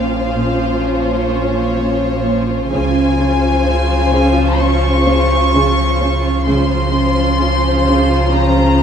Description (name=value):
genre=cinematic, suspense film score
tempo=64 BPM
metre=4/4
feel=straight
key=unclear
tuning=A4 = 438 Hz
part: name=clear studio violin section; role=melody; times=0.0-8.8 s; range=Db5 to C#6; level=-20 LUFS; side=left 2 dB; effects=none
part: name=clear studio violin section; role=second line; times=0.0-8.8 s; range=F4 to C5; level=-20 LUFS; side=left 2 dB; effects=none
part: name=warm studio viola section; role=accompaniment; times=0.0-8.8 s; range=F3 to Db4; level=-20 LUFS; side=left 1 dB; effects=none
part: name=rich studio cello section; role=riff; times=0.0-8.6 s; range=Bb2 to C#4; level=-22 LUFS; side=right 2 dB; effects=none
part: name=warm studio cello section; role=bass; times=0.0-8.8 s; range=Bb2 to C#3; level=-20 LUFS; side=right 4 dB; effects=none
part: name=pure sine sub bass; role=drone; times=0.0-8.8 s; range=Bb1 to C#2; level=-19 LUFS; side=equal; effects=none
part: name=concert harp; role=texture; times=0.0-0.1, 6.0-8.8 s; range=none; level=barely audible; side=none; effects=none
part: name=dark studio double bass section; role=bass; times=2.7-7.4 s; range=C#2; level=-26 LUFS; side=right 2 dB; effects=none
room=wet scoring stage reverb, RT60 1.6 s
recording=minimal, uncompressed stereo recording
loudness=-12 LUFS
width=side -8 dB against mid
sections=0.0-8.8 A section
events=none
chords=0.0 Bbmadd9; 2.7 C#maj7